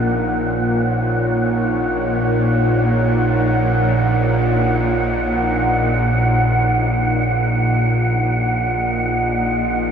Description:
dark ambient drone; free time; A4 = 441 Hz
deep dark ambient pad; sustained chords; 0.0-9.9 s; Bb3 to Gb5; -24 LUFS; left 1 dB; chorus, built-in reverb
bowed-like drone; drone; 0.0-9.9 s; Bb1 to Bb2; -17 LUFS; equal; built-in reverb
wind-like tuned noise texture; texture; 0.0-9.9 s; Gb5; -22 LUFS; right 2 dB; built-in reverb
wet huge ambient reverb, RT60 8.2 s; -15 LUFS; side -7 dB against mid
0.0-9.9 A section
fade-out on ambient pad 0.0-9.9
0.0 Ebm7/Bb
free time

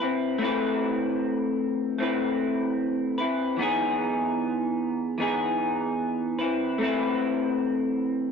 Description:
indie pop; 75 BPM; 4/4; straight; A4 = 440 Hz
electric guitar through a small old amp; solo; 0.0-8.3 s; E3 to B4; -24 LUFS; left 1 dB; analog chorus, warbly pitch drift
light reverb; dry, close 1970s-style studio recording; -24 LUFS; side -6 dB against mid
0.0-8.3 A section
0.0 Amadd9; 3.6 Emaj7; 6.4 Amadd9
| 0.39 1.19 1.99 2.79 | 3.59 4.39 5.19 5.99 | 6.79 7.59

